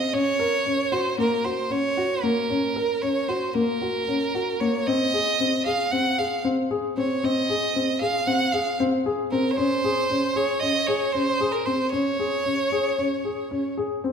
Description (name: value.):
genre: contemporary instrumental, chamber music in an uneven meter.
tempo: 229 BPM (eighths).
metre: 9/8.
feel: straight.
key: unclear.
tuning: A4 = 440 Hz.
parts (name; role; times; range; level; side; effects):
clear violin; melody; 0.0-13.7 s; Bb4 to Gb5; -25 LUFS; right 3 dB; none.
dark baby grand piano; arpeggios; 0.0-14.1 s; Bb3 to Bb4; -24 LUFS; left 2 dB; none.
room: moderate concert hall reverb, RT60 1.9 s.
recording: minimal, uncompressed stereo recording.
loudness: -21 LUFS.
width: side -7 dB against mid.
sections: 0.0-14.1 A section.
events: none.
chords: 0.1 Bbm; 4.9 Ab; 9.6 Bbm9 (rootless).